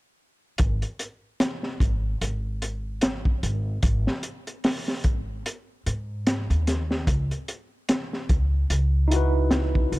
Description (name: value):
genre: trip hop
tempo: 74 BPM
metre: 4/4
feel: swing 58% on 16ths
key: G# minor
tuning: A4 = 439 Hz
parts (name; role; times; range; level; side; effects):
- upright bass; bass; 0.6-10.0 s; G#1 to G#2; -25 LUFS; equal; none
- crunchy breakbeat drum kit; drums; 0.6-10.0 s; hi-hat, kick drum, snare drum; -24 LUFS; equal; none
- tine electric piano; accompaniment; 9.1-10.0 s; D#4 to B4; -25 LUFS; equal; medium stereo tremolo, harmonic tremolo
room: small room ambience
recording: dark, warm production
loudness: -23 LUFS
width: side -19 dB against mid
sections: 0.6-10.0 A section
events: none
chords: 0.6 G#5; 7.1 C#m11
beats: | 0.59 1.41 2.22 3.03 | 3.84 4.65 5.46 6.27 | 7.08 7.89 8.70 9.51